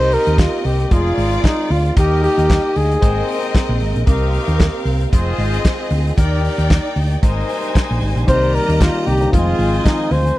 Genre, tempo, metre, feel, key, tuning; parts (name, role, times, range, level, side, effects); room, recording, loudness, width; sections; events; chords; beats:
disco; 114 BPM; 4/4; swing 56% on 16ths; A4 = 438 Hz
breathy flugelhorn; melody; 0.0-3.5, 8.3-10.4 s; Eb4 to C5; -18 LUFS; equal
clear symphonic string section; second line; 0.0-10.4 s; Ab3 to Bb5; -25 LUFS; equal
mellow French horn section; sustained chords; 0.0-10.4 s; C3 to D5; -28 LUFS; right 2 dB; stereo widening
clear horn section; stabs; 0.0-10.1 s; C4 to G5; -26 LUFS; left 5 dB
hollow-body short-scale fingered electric bass; bass; 0.0-10.3 s; F1 to Eb2; -18 LUFS; equal
warm soul drum kit; drums; 0.1-10.4 s; hi-hat, kick drum, snare drum; -15 LUFS; equal
tine electric piano; accompaniment; 8.3-10.4 s; D3 to F4; -22 LUFS; left 3 dB
little or no reverb; -14 LUFS; side -16 dB against mid
0.0-10.4 A section
0.0 Cm7; 0.9 Fm7; 2.0 Ebmaj7; 3.0 Abmaj9; 4.1 Cm7; 5.1 Fm7; 6.2 Ebmaj7; 7.2 Abmaj9; 8.3 Cm7; 9.3 Fm7
0.38 0.91 1.44 | 1.96 2.49 3.02 3.54 | 4.07 4.60 5.12 5.65 | 6.17 6.70 7.23 7.75 | 8.28 8.80 9.33 9.85 | 10.38